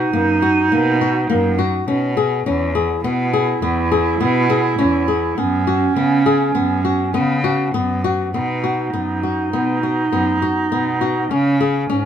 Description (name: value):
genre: contemporary instrumental, chamber music in an uneven meter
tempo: 102 BPM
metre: 5/4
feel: straight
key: B major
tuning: A4 = 445 Hz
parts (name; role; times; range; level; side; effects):
- breathy clarinet; second line; 0.0-12.1 s; C#4 to E4; -20 LUFS; right 4 dB; none
- flamenco guitar; arpeggios; 0.0-12.1 s; A#3 to G#4; -20 LUFS; left 4 dB; none
- clear cello; bass; 0.0-12.1 s; E2 to C#3; -21 LUFS; right 1 dB; none
room: moderate studio ambience, RT60 0.5 s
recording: none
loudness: -15 LUFS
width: side -9 dB against mid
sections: 0.0-8.3 A section; 8.3-12.1 B section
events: none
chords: 0.0 Bmaj7; 2.5 E6; 5.4 F#sus4; 8.3 B; 11.3 C#5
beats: 0.14 0.72 1.30 1.89 | 2.47 3.04 3.63 4.21 4.79 | 5.38 5.96 6.55 7.14 7.74 | 8.34 8.93 9.53 10.12 10.71 | 11.30 11.89